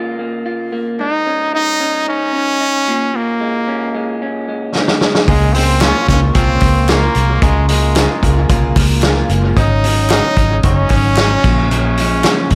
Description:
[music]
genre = jangly indie pop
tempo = 112 BPM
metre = 4/4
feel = straight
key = Db major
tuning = A4 = 440 Hz
[part]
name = electric guitar through a small old amp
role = arpeggios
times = 0.0-12.6 s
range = Ab2 to F4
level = -24 LUFS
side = equal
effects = analog delay
[part]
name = bright trumpet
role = melody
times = 1.0-12.6 s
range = Ab3 to Eb4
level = -20 LUFS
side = equal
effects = none
[part]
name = vintage drum kit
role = drums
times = 4.8-12.6 s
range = crash cymbal, hi-hat, kick drum, snare drum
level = -17 LUFS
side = equal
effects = analog delay
[part]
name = glockenspiel with rubber mallets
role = second line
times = 5.3-12.6 s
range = Ab5 to Eb6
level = -28 LUFS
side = equal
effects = analog delay
[part]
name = picked twelve-string acoustic guitar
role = accompaniment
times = 5.3-12.6 s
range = Ab2 to F4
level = -24 LUFS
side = equal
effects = analog delay
[part]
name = vintage muted fingered electric bass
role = bass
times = 5.3-12.6 s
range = Gb1 to Db2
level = -17 LUFS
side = equal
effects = none
[part]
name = group handclap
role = percussion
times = 5.8-12.4 s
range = none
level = -32 LUFS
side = equal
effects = none
[sound]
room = studio reverb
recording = echo-heavy mix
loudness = -14 LUFS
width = mono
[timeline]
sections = 0.0-12.6 A section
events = drum fill 4.7-5.3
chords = 0.0 Db6; 1.0 Absus4; 2.9 Bbm7; 5.3 Db6; 9.6 Ab7sus4; 11.4 Bbm7

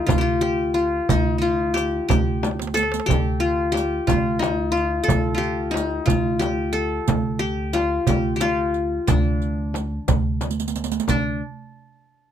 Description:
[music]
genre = Arabic maqam ensemble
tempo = 60 BPM (dotted quarters)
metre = 6/8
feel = straight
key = D maqam bayati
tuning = A4 = 435 Hz
[part]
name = qanun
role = melody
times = 0.0-11.4 s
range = D4 to A4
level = -22 LUFS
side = left 3 dB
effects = none
[part]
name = upright bass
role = bass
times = 0.1-11.4 s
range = D2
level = -25 LUFS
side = equal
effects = none
[part]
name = darbuka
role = percussion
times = 0.1-11.4 s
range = none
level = -26 LUFS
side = right 9 dB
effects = none
[part]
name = frame drum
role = percussion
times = 0.1-11.4 s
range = none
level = -27 LUFS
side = left 3 dB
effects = none
[part]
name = riq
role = percussion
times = 0.1-11.4 s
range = none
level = -30 LUFS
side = right 10 dB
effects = none
[sound]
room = little or no reverb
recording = close, detailed microphones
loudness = -19 LUFS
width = side -9 dB against mid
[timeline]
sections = 0.0-11.1 A section; 11.1-12.3 B section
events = drum fill 2.4-3.1, 10.4-11.1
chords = none

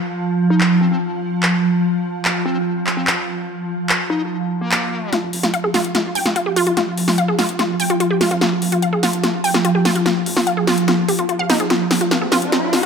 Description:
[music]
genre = psychedelic trance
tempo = 146 BPM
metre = 4/4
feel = straight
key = F minor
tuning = A4 = 445 Hz
[part]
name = evolving wavetable pad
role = sustained chords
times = 0.0-12.9 s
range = F3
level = -20 LUFS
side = right 1 dB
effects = ensemble chorus, built-in reverb, phaser
[part]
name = metallic wobble bass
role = second line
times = 0.5-5.1 s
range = Bb3 to Eb4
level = -26 LUFS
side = left 4 dB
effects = chorus, high-pass filter, digital delay
[part]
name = big-room dance drum kit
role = drums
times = 0.6-12.9 s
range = handclaps, hi-hat, snare drum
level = -20 LUFS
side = equal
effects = low-pass filter on snare, studio reverb, low-pass filter on hats
[part]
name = wide unison pluck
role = riff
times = 5.1-12.9 s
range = Eb4 to G5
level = -19 LUFS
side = equal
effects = auto-pan, dub echo
[part]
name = round analog bass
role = bass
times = 5.2-12.9 s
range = F1 to F2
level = -39 LUFS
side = equal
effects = none
[part]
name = riser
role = sound effects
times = 12.0-12.9 s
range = none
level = -23 LUFS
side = left 2 dB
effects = none
[sound]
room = moderate lush hall reverb, RT60 2.2 s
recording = high-pass filter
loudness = -16 LUFS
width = side -6 dB against mid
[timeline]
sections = 0.0-5.1 A section; 5.1-12.9 B section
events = build-up 5.1-12.9; drum fill 5.1-12.9; filter sweep on ambient pad 5.1-12.9; riser 12.0-12.9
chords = none

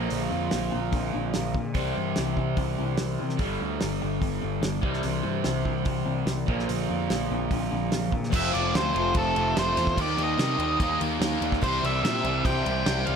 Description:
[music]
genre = classic rock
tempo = 146 BPM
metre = 4/4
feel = straight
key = unclear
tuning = A4 = 439 Hz
[part]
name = raw garage guitar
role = riff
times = 0.0-13.2 s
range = F2 to G4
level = -31 LUFS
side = left 7 dB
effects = overdrive, phaser
[part]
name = raw garage guitar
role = riff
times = 0.0-13.2 s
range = F2 to C4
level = -30 LUFS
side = right 6 dB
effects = overdrive
[part]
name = fuzz picked electric bass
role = bass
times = 0.0-13.2 s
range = F1 to C3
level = -30 LUFS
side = equal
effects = overdrive
[part]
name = damped 70s drum kit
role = drums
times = 0.1-13.2 s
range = crash cymbal, hi-hat, kick drum, snare drum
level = -30 LUFS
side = equal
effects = none
[part]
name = picked swing-style acoustic guitar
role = accompaniment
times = 8.3-13.2 s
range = C3 to A4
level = -36 LUFS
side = left 1 dB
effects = none
[part]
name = octave-fuzz lead guitar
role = melody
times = 8.4-13.2 s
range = A4 to G5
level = -28 LUFS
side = equal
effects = distortion
[sound]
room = moderate studio reverb, RT60 0.8 s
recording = none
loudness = -24 LUFS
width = side -6 dB against mid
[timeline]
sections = 0.0-8.3 A section; 8.3-13.2 B section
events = none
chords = 0.0 Bb; 1.8 C; 3.4 G5; 4.8 C; 6.5 Bb; 8.3 F; 10.0 Eb; 11.6 C

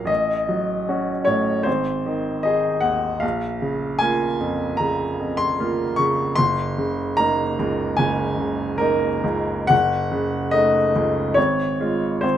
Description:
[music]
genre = classical, romantic character piece for solo piano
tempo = 64-78 BPM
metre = 4/4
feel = rubato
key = unclear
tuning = A4 = 440 Hz
[part]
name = clear baby grand piano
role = solo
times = 0.0-12.4 s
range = Gb1 to Db6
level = -19 LUFS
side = equal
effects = none
[sound]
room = light reverb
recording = minimal, uncompressed stereo recording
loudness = -19 LUFS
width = side -10 dB against mid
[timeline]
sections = 0.0-12.4 A section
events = none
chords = 0.1 Gbm/A; 1.7 Ab; 3.2 Bbm; 6.4 Ebm7/Gb; 9.7 Ebm7b5/Gb; 11.4 Db/Ab

